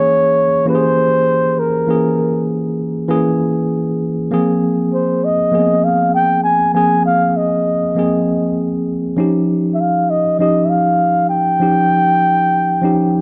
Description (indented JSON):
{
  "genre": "soul",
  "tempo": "99 BPM",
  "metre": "4/4",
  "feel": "swing 54% on 16ths",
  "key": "Ab major",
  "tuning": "A4 = 440 Hz",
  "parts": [
    { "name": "breathy flugelhorn", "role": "melody", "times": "0.0-13.2 s", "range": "Bb4 to Ab5", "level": "-17 LUFS", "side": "equal", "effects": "none" },
    { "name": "tine electric piano", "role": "accompaniment", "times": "0.0-13.2 s", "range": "Fb3 to Ab4", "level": "-18 LUFS", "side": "equal", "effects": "none" }
  ],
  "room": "light reverb, studio reverb",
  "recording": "dark, warm production",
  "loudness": "-15 LUFS",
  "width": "mono",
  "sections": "0.0-13.2 A section",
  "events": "none",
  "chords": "0.0 Dbm6; 4.3 Ab69; 9.2 Eb9"
}